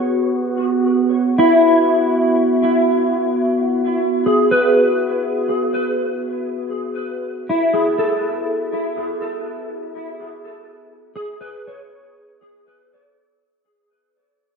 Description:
ambient; free time; A4 = 441 Hz
analog drone; drone; 0.0-13.7 s; B3 to F#4; -20 LUFS; right 1 dB; chorus
mellow electric guitar; arpeggios; 1.4-13.3 s; E4 to C#5; -18 LUFS; left 1 dB; ensemble chorus, dub echo
wet spring reverb, RT60 2.6 s; echo-heavy mix; -15 LUFS; side -5 dB against mid
0.0-13.7 A section
fade-out 4.9-13.7
0.0 N.C.; 0.6 Eadd9/B; 7.1 F#m7

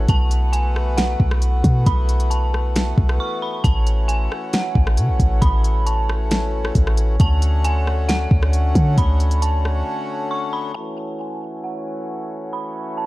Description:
hip hop, atmospheric cloud-rap; 135 BPM; 4/4; half-time; A major; A4 = 439 Hz
hand-pumped harmonium; sustained chords; 0.0-13.1 s; D3 to F#4; -27 LUFS; left 2 dB; sidechain pumping, low-pass filter
clean 808-style bass; bass; 0.0-9.8 s; A1 to D3; -18 LUFS; equal
dark detuned synth bell; melody; 0.1-13.1 s; F#5 to C#6; -27 LUFS; right 2 dB; chorus, phaser, low-pass filter, digital delay
smooth R&B drum kit; drums; 0.1-9.8 s; hi-hat, kick drum, rim click, snare drum; -20 LUFS; equal
little or no reverb; dark, warm production; -17 LUFS; side -18 dB against mid
0.0-10.8 A section; 10.8-13.1 B section
break 3.2-3.6, 9.9-10.8; filter sweep 10.8-13.1
0.1 B7sus4; 3.6 A6; 7.2 Dmaj7; 10.8 A6

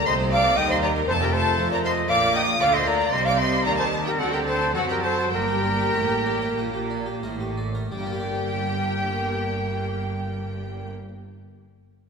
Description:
classical, baroque-style concerto movement with solo episodes; 85-118 BPM; 4/4; straight; G minor; A4 = 436 Hz
rich chamber violin section; melody; 0.0-10.9 s; F#5 to Eb6; -27 LUFS; left 2 dB
silver concert flute; melody; 0.0-10.9 s; A4 to G5; -26 LUFS; equal
harpsichord; accompaniment; 0.0-11.2 s; F2 to F5; -34 LUFS; left 2 dB
rich chamber viola section; accompaniment; 0.0-10.9 s; G3 to C4; -31 LUFS; right 2 dB
rich studio double bass section; bass; 0.0-10.9 s; F1 to F#2; -31 LUFS; right 2 dB
warm chamber cello section; bass; 0.0-10.9 s; F2 to F#3; -30 LUFS; right 3 dB
warm symphonic violin section; second line; 0.1-10.9 s; F#4 to Eb5; -30 LUFS; left 2 dB
wet concert hall reverb, RT60 2.1 s; minimal, uncompressed stereo recording; -21 LUFS; side -5 dB against mid
0.0-7.9 A section; 7.9-12.1 B section
slowing down 2.1-7.9
0.1 Cm7; 1.1 F; 2.1 Bbmaj7; 3.1 Cm; 4.2 D7; 5.3 Gm

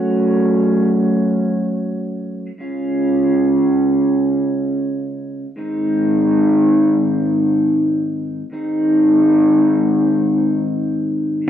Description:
rock; free time; A4 = 440 Hz
electric guitar through a small old amp; solo; 0.0-11.5 s; Ab2 to Gb4; -14 LUFS; equal; slapback echo
moderate studio reverb, RT60 0.6 s; worn, warbling old tape, cassette tape, warbly pitch drift; -14 LUFS; side -10 dB against mid
0.0-11.5 A section
0.0 Gbm; 2.6 Db; 5.6 Ab

